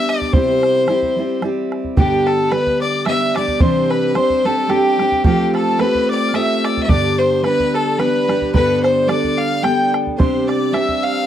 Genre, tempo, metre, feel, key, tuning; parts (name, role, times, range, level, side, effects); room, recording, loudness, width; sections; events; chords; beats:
celtic folk, Celtic waltz; 110 BPM; 3/4; swing 54% on 8ths; C major; A4 = 440 Hz
clear fiddle; melody; 0.0-11.3 s; G4 to G5; -18 LUFS; left 2 dB; slapback echo
bright tin whistle; second line; 0.0-11.3 s; G5 to G6; -30 LUFS; left 4 dB
fingerpicked steel-string acoustic guitar; accompaniment; 0.0-11.3 s; G2 to A4; -18 LUFS; equal
bodhran; percussion; 0.1-11.0 s; -19 LUFS; right 1 dB
mandolin; second line; 2.0-11.3 s; G4 to G5; -25 LUFS; right 6 dB
light reverb; dry, close 1970s-style studio recording; -14 LUFS; side -10 dB against mid
0.0-2.0 A section; 2.0-11.3 A section
0.3 C; 2.0 G; 3.6 Cadd9; 5.2 Fadd9; 6.9 G; 8.5 Gadd9; 10.2 Csus2
| 0.33 0.88 1.42 | 1.97 2.51 3.06 | 3.61 4.15 4.70 | 5.25 5.80 6.34 | 6.89 7.44 7.99 | 8.54 9.09 9.64 | 10.19 10.73